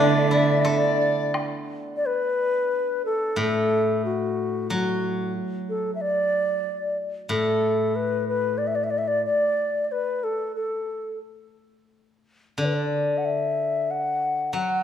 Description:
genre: chinese traditional, Chinese chamber ensemble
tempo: 91 BPM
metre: 4/4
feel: rubato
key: D gong mode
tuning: A4 = 439 Hz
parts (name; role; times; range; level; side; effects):
- xiao; melody; 0.0-14.8 s; F#4 to F#5; -24 LUFS; left 1 dB; none
- dark cello; second line; 0.0-1.3 s; D3; -25 LUFS; right 6 dB; none
- hammered dulcimer; second line; 0.0-3.0 s; B3 to F#4; -32 LUFS; right 2 dB; none
- large dizi; second line; 0.0-1.3 s; D5 to E5; -26 LUFS; left 2 dB; none
- steel-string zither; accompaniment; 0.0-14.8 s; A2 to A4; -26 LUFS; equal; none
- woodblock; percussion; 0.6-1.5 s; none; -34 LUFS; left 2 dB; none
room: wet recital hall reverb, RT60 1.6 s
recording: none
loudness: -22 LUFS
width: side -9 dB against mid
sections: 0.0-2.0 A section; 2.0-14.8 B section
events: none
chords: none

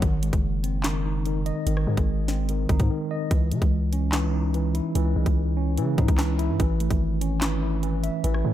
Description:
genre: hip hop, drill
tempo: 146 BPM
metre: 4/4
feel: half-time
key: C# harmonic minor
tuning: A4 = 437 Hz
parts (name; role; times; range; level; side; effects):
- tine electric piano; accompaniment; 0.0-8.5 s; D#3 to E5; -27 LUFS; right 1 dB; medium stereo tremolo, low-pass filter
- long sustained 808-style bass; bass; 0.0-8.5 s; F#1 to C#3; -25 LUFS; equal; none
- drill drum kit; drums; 0.0-8.4 s; handclaps, hi-hat, kick drum, rim click, snare drum; -26 LUFS; equal; none
room: light reverb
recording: none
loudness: -22 LUFS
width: side -12 dB against mid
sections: 0.0-8.5 A section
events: break 2.9-3.3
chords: 0.0 G#; 3.3 C#madd9; 6.6 A

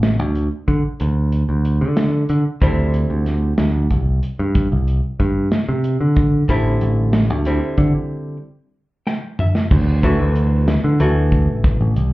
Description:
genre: progressive instrumental, band music in an uneven meter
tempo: 186 BPM (eighths)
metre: 11/8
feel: straight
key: D mixolydian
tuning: A4 = 440 Hz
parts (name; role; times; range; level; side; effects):
- modern bright picked electric bass; bass; 0.0-12.1 s; A1 to D3; -16 LUFS; equal; none
- modern studio drum kit; drums; 0.0-12.1 s; crash cymbal, hi-hat, kick drum, snare drum, toms; -19 LUFS; equal; none
- archtop guitar, miked and amplified; accompaniment; 2.6-11.9 s; D3 to G5; -22 LUFS; left 2 dB; none
room: little or no reverb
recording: heard muffled through a wall, club reverb, EQ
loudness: -15 LUFS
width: side -18 dB against mid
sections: 0.0-9.7 A section; 9.7-12.1 B section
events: break 7.9-9.7; hollow-body jazz guitar fill 8.7-9.7; drum fill 9.1-9.7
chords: 0.0 D7sus4; 9.7 D

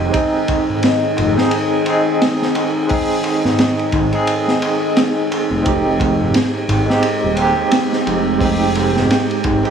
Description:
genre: trip hop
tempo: 87 BPM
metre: 4/4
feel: swing 59% on 16ths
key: unclear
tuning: A4 = 442 Hz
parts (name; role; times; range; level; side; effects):
- barky tine electric piano; accompaniment; 0.0-9.7 s; Ab3 to Ab4; -18 LUFS; right 2 dB; medium stereo tremolo, tape echo
- deep dark ambient pad; sustained chords; 0.0-9.7 s; Ab3 to G5; -21 LUFS; equal; chorus, built-in reverb
- dark detuned saw bass; bass; 0.0-9.6 s; Eb1 to Ab1; -19 LUFS; equal; none
- darbuka; percussion; 0.0-9.7 s; none; -27 LUFS; equal; none
- crunchy breakbeat drum kit; drums; 0.1-9.7 s; hi-hat, kick drum, ride cymbal, snare drum; -20 LUFS; equal; none
room: light reverb, small room ambience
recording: studio ambience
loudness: -14 LUFS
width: side -7 dB against mid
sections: 0.0-9.7 A section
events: none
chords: 0.1 Ab/F; 5.7 Fm7

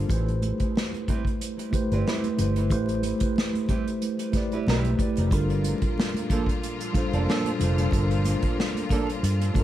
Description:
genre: R&B, neo-soul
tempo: 92 BPM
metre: 4/4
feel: swing 55% on 16ths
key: unclear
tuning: A4 = 438 Hz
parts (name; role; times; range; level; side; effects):
- mellow tine electric piano; accompaniment; 0.0-9.6 s; G3 to D5; -28 LUFS; equal; medium stereo tremolo, tape echo
- clear studio string section; sustained chords; 0.0-0.1, 5.3-9.6 s; Bb2 to F4; -34 LUFS; left 2 dB; none
- vintage muted fingered electric bass; bass; 0.0-9.6 s; F1 to G2; -25 LUFS; equal; none
- unplugged drum kit; drums; 0.1-9.6 s; hi-hat, kick drum, snare drum; -27 LUFS; equal; none
- congas; percussion; 0.1-9.6 s; none; -37 LUFS; left 1 dB; none
- flamenco guitar; second line; 1.1-9.1 s; F3 to B4; -34 LUFS; right 4 dB; tape echo
room: light reverb, studio ambience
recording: echo-heavy mix, vinyl crackle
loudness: -23 LUFS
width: side -13 dB against mid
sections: 0.1-9.6 A section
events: none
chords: 0.1 Am9; 5.3 Gm9

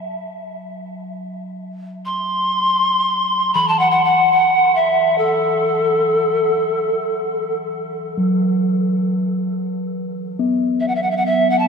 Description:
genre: world meditative, free-time meditation music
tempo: free time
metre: none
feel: none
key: unclear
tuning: A4 = 440 Hz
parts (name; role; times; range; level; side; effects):
- bronze singing bowl; texture; 0.0-11.7 s; E3 to B3; -23 LUFS; equal; stereo widening
- breathy reedy pan flute; melody; 2.1-11.7 s; A4 to C6; -17 LUFS; equal; tape echo
room: wet huge ambient reverb, RT60 7.7 s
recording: in a vast, echoing space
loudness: -15 LUFS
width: side -5 dB against mid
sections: 0.0-9.3 A section; 9.3-11.7 A section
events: none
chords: none

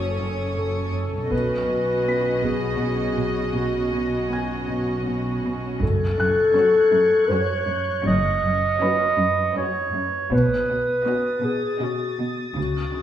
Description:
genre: cinematic, suspense film score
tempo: 80 BPM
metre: 3/4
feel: straight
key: unclear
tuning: A4 = 440 Hz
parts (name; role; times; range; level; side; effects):
- warm studio violin section; melody; 0.0-12.4 s; C#5 to D#5; -35 LUFS; left 2 dB; none
- dark clarinet; second line; 0.0-13.0 s; F#4 to D#5; -22 LUFS; left 1 dB; none
- warm studio viola section; accompaniment; 0.0-12.4 s; C#4 to A4; -31 LUFS; right 1 dB; none
- warm studio cello section; riff; 0.0-13.0 s; F#2 to B3; -28 LUFS; right 1 dB; none
- dark studio cello section; bass; 0.0-13.0 s; F#2 to C#3; -30 LUFS; right 2 dB; none
- rich studio double bass section; bass; 0.0-13.0 s; F#1 to C#2; -30 LUFS; right 2 dB; none
- felt-muted upright piano; texture; 0.0-12.6 s; B4 to B6; -34 LUFS; left 1 dB; none
- rich studio violin section; texture; 0.0-0.9, 5.8-13.0 s; C#6 to A6; -34 LUFS; left 1 dB; none
- taiko ensemble; drums; 1.3-11.8 s; none; -33 LUFS; equal; none
room: wet recital hall reverb, RT60 1.6 s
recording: recorded in a church or concert hall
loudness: -20 LUFS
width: side -10 dB against mid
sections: 0.0-13.0 A section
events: none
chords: 0.0 F#m; 1.3 Badd9; 5.8 F#m; 10.3 Badd9

